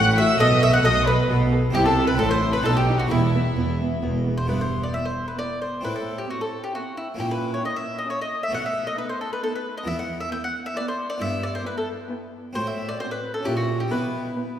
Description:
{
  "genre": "classical, baroque-style concerto movement with solo episodes",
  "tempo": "134 BPM",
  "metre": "3/4",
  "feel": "straight",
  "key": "E minor",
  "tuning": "A4 = 440 Hz",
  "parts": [
    { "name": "mandolin", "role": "melody", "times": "0.0-14.6 s", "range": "E4 to G5", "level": "-26 LUFS", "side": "left 1 dB", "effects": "none" },
    { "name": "warm chamber violin section", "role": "melody", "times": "0.0-14.6 s", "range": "E5 to F#6", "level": "-29 LUFS", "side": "left 2 dB", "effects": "none" },
    { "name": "rich chamber violin section", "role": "second line", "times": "0.0-14.6 s", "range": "D#4 to F#5", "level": "-29 LUFS", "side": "left 1 dB", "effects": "none" },
    { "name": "dark chamber viola section", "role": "accompaniment", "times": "0.0-14.6 s", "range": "B3 to A4", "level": "-31 LUFS", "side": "right 1 dB", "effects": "none" },
    { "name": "harpsichord", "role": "accompaniment", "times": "0.0-14.6 s", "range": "E2 to F#4", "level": "-30 LUFS", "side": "equal", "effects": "none" },
    { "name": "rich chamber cello section", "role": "bass", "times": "0.0-14.3 s", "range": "E2 to C3", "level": "-28 LUFS", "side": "right 2 dB", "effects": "none" },
    { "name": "warm studio double bass section", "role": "bass", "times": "0.0-4.4 s", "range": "E1 to C2", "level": "-23 LUFS", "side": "right 2 dB", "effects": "none" }
  ],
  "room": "wet scoring stage reverb, RT60 2.1 s",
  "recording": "heard from further back in the room",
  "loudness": "-21 LUFS",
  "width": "side -10 dB against mid",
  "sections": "0.0-4.5 A section; 4.5-14.6 B section",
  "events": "none",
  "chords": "0.4 B5; 1.7 C; 2.2 Amadd9; 2.6 B; 3.1 E5; 4.5 Em/G; 5.8 F#m7b5/A; 7.2 A#dim; 8.5 B7; 9.9 Em; 11.2 Em/G; 12.6 F#dim/A; 13.5 A#dim; 13.9 Em/B"
}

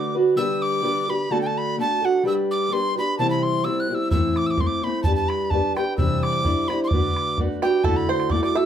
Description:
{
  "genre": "celtic folk, Celtic polka",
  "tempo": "128 BPM",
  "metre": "2/4",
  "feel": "swing 54% on 8ths",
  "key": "D mixolydian",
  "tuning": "A4 = 439 Hz",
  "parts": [
    { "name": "breathy tin whistle", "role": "melody", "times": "0.0-8.7 s", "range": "F#5 to F#6", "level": "-25 LUFS", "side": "right 1 dB", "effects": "none" },
    { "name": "fingerpicked steel-string acoustic guitar", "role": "accompaniment", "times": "0.0-8.7 s", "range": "A2 to C5", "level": "-22 LUFS", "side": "equal", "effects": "none" },
    { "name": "bodhran", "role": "percussion", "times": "4.1-8.4 s", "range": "none", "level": "-24 LUFS", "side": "equal", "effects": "none" },
    { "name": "bluegrass banjo", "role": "second line", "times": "7.6-8.7 s", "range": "G4 to E5", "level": "-26 LUFS", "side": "right 6 dB", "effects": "none" }
  ],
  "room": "wet small room ambience, RT60 0.5 s",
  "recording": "heard from further back in the room",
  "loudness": "-20 LUFS",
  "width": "side -9 dB against mid",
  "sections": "0.4-7.9 A section",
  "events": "none",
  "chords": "0.4 G; 1.3 D; 2.2 G; 3.2 C; 4.1 Am; 5.1 G; 6.0 Cadd9; 6.9 D6; 7.9 Dadd9"
}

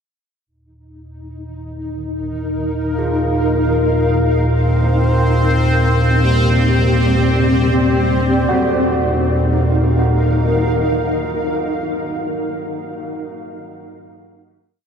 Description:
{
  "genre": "dark ambient drone",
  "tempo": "free time",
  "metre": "none",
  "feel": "none",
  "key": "unclear",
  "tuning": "A4 = 440 Hz",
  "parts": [
    { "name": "granular cloud pad", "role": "sustained chords", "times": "1.4-12.5 s", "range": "C4 to F5", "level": "-19 LUFS", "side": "equal", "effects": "built-in reverb" },
    { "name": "deep rumbling drone", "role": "drone", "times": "1.4-12.2 s", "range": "Eb2 to Bb2", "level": "-17 LUFS", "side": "equal", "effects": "built-in reverb, wide subtle chorus" },
    { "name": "old church bells", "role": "arpeggios", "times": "3.0-12.3 s", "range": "G3 to Gb4", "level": "-26 LUFS", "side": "right 2 dB", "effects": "diffuse ambient delay" },
    { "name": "bubbling stepped-filter texture", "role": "texture", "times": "4.7-8.5 s", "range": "C4 to C5", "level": "-22 LUFS", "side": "equal", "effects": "chorus, built-in reverb" }
  ],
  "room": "wet huge ambient reverb, RT60 8.8 s",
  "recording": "none",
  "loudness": "-14 LUFS",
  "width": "side -7 dB against mid",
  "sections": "0.5-8.5 A section; 8.5-12.5 final chord",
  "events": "fade-in on church bells 0.5-8.5",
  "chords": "0.5 Eb5; 4.5 Cm; 8.5 Ebm"
}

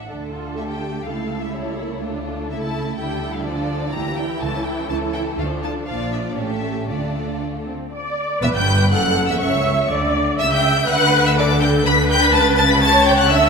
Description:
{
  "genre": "quick classical-period movement for string orchestra",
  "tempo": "123 BPM",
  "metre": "2/4",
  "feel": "rubato",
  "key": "D minor",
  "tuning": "A4 = 440 Hz",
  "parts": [
    { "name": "rich symphonic violin section", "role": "second line", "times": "0.0-13.4 s", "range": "G3 to B5", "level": "-24 LUFS", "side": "left 2 dB", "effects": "none" },
    { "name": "warm symphonic viola section", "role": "accompaniment", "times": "0.1-13.5 s", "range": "D3 to E5", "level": "-22 LUFS", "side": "right 1 dB", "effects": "none" },
    { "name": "clear chamber double bass section", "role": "bass", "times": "0.1-13.5 s", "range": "E1 to D2", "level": "-25 LUFS", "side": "right 2 dB", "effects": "none" },
    { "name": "rich symphonic cello section", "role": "bass", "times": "0.1-13.5 s", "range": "C#2 to D3", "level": "-24 LUFS", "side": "right 1 dB", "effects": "none" },
    { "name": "clear symphonic violin section", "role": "melody", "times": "0.6-13.5 s", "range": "C#5 to B6", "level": "-23 LUFS", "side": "left 4 dB", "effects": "none" }
  ],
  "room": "wet concert hall reverb, RT60 2.5 s",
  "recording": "none",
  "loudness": "-17 LUFS",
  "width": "side -5 dB against mid",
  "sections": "0.1-7.9 A section; 7.9-13.5 A section",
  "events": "none",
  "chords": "0.1 Dm; 0.6 Dsus4; 1.1 A7/C#; 2.0 Dm; 2.5 A/C#; 3.0 Dm; 3.9 Em7b5/D; 4.4 A/C#; 5.4 Dm; 5.9 Bb; 6.4 A7; 6.9 Dm; 7.9 N.C.; 8.4 Em (rootless); 8.9 A; 9.9 N.C.; 10.4 C#dim; 10.9 D5; 12.3 A/C#"
}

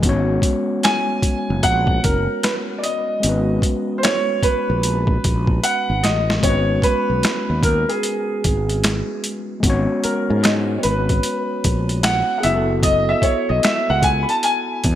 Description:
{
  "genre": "R&B, neo-soul",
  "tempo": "75 BPM",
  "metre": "4/4",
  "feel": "swing 64% on 16ths",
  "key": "G# minor, G# phrygian from 6.4 s",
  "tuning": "A4 = 440 Hz",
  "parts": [
    { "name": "overdriven tine electric piano", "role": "accompaniment", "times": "0.0-15.0 s", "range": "G#3 to C#5", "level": "-24 LUFS", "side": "left 1 dB", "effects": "none" },
    { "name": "fretless electric bass", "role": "bass", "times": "0.0-15.0 s", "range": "F#1 to G#2", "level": "-21 LUFS", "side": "equal", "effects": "none" },
    { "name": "boom bap sampler-style drum kit", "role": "drums", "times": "0.0-15.0 s", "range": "finger snaps, hi-hat, kick drum, snare drum", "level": "-20 LUFS", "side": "equal", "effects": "overdrive" },
    { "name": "warm concert grand piano", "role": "melody", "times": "0.8-15.0 s", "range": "G#4 to B5", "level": "-20 LUFS", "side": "right 1 dB", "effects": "lush chorus" }
  ],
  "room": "moderate plate reverb, RT60 2.1 s",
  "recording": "bright 1980s-style digital production",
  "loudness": "-16 LUFS",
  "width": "side -11 dB against mid",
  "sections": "0.0-6.4 A section; 6.4-15.0 B section",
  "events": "drum fill 5.6-6.4",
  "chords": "0.0 G#m11; 12.4 F#m11"
}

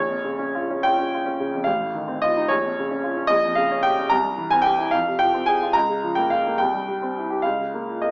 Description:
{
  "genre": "classical, romantic character piece for solo piano",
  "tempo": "73 BPM (dotted quarters)",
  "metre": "6/8",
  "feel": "uneven beats, rubato",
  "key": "unclear",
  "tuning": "A4 = 436 Hz",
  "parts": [
    { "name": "clear baby grand piano", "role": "solo", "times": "0.0-8.1 s", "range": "A1 to Bb5", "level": "-19 LUFS", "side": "equal", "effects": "none" }
  ],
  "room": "light reverb",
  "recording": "small speaker sound",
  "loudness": "-19 LUFS",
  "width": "side -28 dB against mid",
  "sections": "0.0-8.1 A section",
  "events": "none",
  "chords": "0.0 Bbm; 1.7 F7/A; 2.5 Bbm; 3.3 Gm7b5/Bb; 4.1 C7; 4.9 Fm; 5.7 Bbm/Db; 6.6 C; 7.4 Bbm/Db"
}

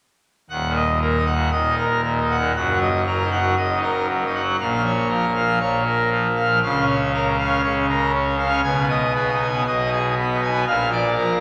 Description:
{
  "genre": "classical, organ toccata",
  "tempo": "118 BPM",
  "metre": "4/4",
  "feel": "straight",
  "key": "Eb minor",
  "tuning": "A4 = 441 Hz",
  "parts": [
    { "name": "pipe organ, full organ", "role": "solo", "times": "0.5-11.4 s", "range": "Eb1 to Ab5", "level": "-20 LUFS", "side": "equal", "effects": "none" }
  ],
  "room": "wet church reverb, RT60 3.1 s",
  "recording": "none",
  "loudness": "-20 LUFS",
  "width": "mono",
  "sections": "0.5-11.4 A section",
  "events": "none",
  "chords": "0.5 Ebm; 2.6 Ebm/Gb; 4.6 Bbm; 6.6 Bbm/Db; 8.6 Abm/Cb; 10.7 Bb"
}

